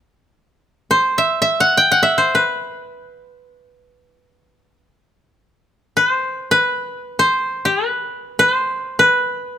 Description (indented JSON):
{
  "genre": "japanese traditional, Japanese chamber music",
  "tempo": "free time",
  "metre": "none",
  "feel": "none",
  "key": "unclear",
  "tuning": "A4 = 440 Hz",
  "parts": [
    { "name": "koto", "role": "solo", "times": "0.9-9.6 s", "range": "B4 to G5", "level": "-15 LUFS", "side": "equal", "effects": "none" }
  ],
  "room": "light reverb",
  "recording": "close, detailed microphones",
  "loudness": "-15 LUFS",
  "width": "side -10 dB against mid",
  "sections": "0.0-9.6 A section",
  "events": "none",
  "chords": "none",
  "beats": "free time"
}